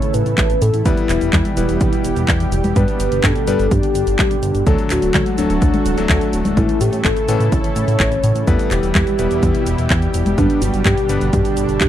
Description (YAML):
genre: italo disco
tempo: 126 BPM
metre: 4/4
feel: straight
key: E dorian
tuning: A4 = 439 Hz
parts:
  - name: soft octave-layered synth lead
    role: melody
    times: 0.0-11.9 s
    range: D4 to C#5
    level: -21 LUFS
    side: equal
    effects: chorus, phaser, tape echo
  - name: lush unison pad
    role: sustained chords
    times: 0.0-11.9 s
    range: B2 to A4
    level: -22 LUFS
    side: right 1 dB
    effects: chorus
  - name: house drum kit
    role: drums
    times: 0.0-11.9 s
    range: cabasa, congas, handclaps, hi-hat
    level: -22 LUFS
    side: left 1 dB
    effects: small room reverb
  - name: chorused synth bass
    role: bass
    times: 0.1-11.9 s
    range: D1 to A2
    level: -19 LUFS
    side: equal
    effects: none
  - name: electronic kick drum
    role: drums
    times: 0.4-11.9 s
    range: none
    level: -19 LUFS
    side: equal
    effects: small room reverb
  - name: clear electric grand piano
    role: stabs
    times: 0.9-11.3 s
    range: E3 to B4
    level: -24 LUFS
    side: left 6 dB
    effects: none
room: little or no reverb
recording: dry, close 1970s-style studio recording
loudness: -14 LUFS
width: side -11 dB against mid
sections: 0.0-11.9 A section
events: none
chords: 0.0 A; 0.9 Em; 2.8 G; 4.7 D; 6.6 A; 8.5 Em; 10.4 G